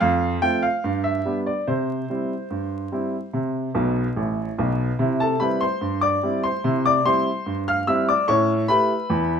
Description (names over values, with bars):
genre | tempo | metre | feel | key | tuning
ragtime piano | 73 BPM | 2/4 | straight | C major | A4 = 440 Hz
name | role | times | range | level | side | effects
clear upright piano | solo | 0.0-9.4 s | A1 to F6 | -20 LUFS | equal | none
room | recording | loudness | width
moderate club reverb, RT60 0.7 s | minimal, uncompressed stereo recording, vinyl crackle | -20 LUFS | side -7 dB against mid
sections
0.0-5.0 A section; 5.0-9.4 B section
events
upright piano fill 3.7-5.0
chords
0.0 F; 0.8 G; 1.7 C; 8.3 A7